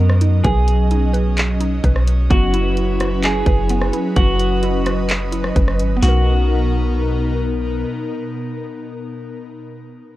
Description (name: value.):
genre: hip hop, atmospheric cloud-rap.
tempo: 129 BPM.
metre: 4/4.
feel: half-time.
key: B major.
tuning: A4 = 440 Hz.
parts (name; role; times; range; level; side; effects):
electric guitar through a small old amp; melody; 0.0-7.4 s; F#4 to A#4; -23 LUFS; equal; low-pass filter, tape echo.
airy breathy pad; sustained chords; 0.0-9.4 s; B2 to D#5; -23 LUFS; equal; chorus, sidechain pumping.
mallet-like synth pluck; arpeggios; 0.0-9.4 s; B3 to B4; -28 LUFS; right 2 dB; chorus, phaser, low-pass filter, tape echo.
soft 808-style bass; bass; 0.0-7.8 s; F#1 to F#2; -17 LUFS; equal; none.
trap drum kit; drums; 0.1-6.1 s; handclaps, hi-hat, kick drum, rim click, snare drum; -18 LUFS; equal; none.
room: little or no reverb.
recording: worn, warbling old tape, cassette tape, warbly pitch drift.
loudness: -15 LUFS.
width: side -16 dB against mid.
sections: 0.0-6.0 A section; 6.0-9.7 B section.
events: none.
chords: 0.0 Bmaj7; 2.3 F#7sus4; 6.0 Bmaj7.